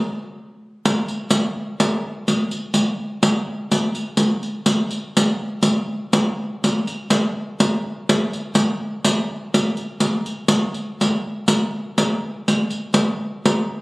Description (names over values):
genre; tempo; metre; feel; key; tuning
italian folk; 82 BPM (dotted quarters); 6/8; rubato; none; none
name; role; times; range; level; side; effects
riq; percussion; 0.9-13.7 s; none; -18 LUFS; equal; none
room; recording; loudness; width
wet recital hall reverb, RT60 1.3 s; recorded on a phone in the room, club reverb; -18 LUFS; side -24 dB against mid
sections
0.0-11.5 A section; 11.5-13.8 B section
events
none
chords
none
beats
0.57 | 1.29 2.02 | 2.73 3.45 | 4.17 4.90 | 5.63 6.37 | 7.10 7.83 | 8.55 9.27 | 9.99 10.73 | 11.47 12.21 | 12.94